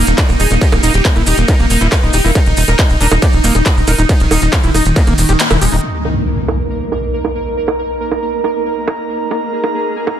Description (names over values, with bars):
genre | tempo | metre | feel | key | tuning
psychedelic trance | 138 BPM | 4/4 | straight | unclear | A4 = 440 Hz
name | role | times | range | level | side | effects
dense compressed supersaw | melody | 0.0-5.8 s | Eb3 to Eb5 | -20 LUFS | left 1 dB | phaser, sidechain pumping, digital delay
pulsing gated texture | sustained chords | 0.0-10.2 s | Bb3 to Bb4 | -20 LUFS | right 3 dB | chorus, built-in reverb, sidechain pumping
overdriven acid bass | riff | 0.0-5.8 s | Bb3 to G4 | -22 LUFS | moving between left 6 dB and right 4 dB | auto-pan, sidechain pumping, digital delay
tight sequencer bass | bass | 0.0-5.8 s | Eb1 to Fb1 | -14 LUFS | equal | tube saturation
drum and bass drum kit | drums | 0.1-10.2 s | bongos, handclaps, hi-hat, ride cymbal | -19 LUFS | right 3 dB | low-pass filter on hats, low-pass filter on perc, low-pass filter on cymbals, low-pass filter on snare, low-pass filter on room
maracas | percussion | 0.1-5.8 s | none | -25 LUFS | right 1 dB | none
electronic kick drum | drums | 0.2-5.0 s | none | -13 LUFS | equal | distortion
impact | sound effects | 5.8-7.6 s | none | -20 LUFS | equal | none
airy breathy pad | texture | 6.3-10.2 s | Eb4 to Bb5 | -20 LUFS | right 1 dB | chorus, sidechain pumping
room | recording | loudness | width
light reverb | dense, heavily limited modern master | -11 LUFS | side -10 dB against mid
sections
0.0-5.8 A section; 5.8-10.2 B section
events
drop 0.0-5.8; kick drops out 5.4-5.8; band accent 5.4; impact 5.8-7.6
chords
0.0 Eb5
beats
0.18 | 0.61 1.05 1.48 1.92 | 2.35 2.79 3.22 3.66 | 4.09 4.53 4.96 5.40 | 5.83 6.27 6.70 7.14 | 7.57 8.01 8.44 8.88 | 9.31 9.74 10.18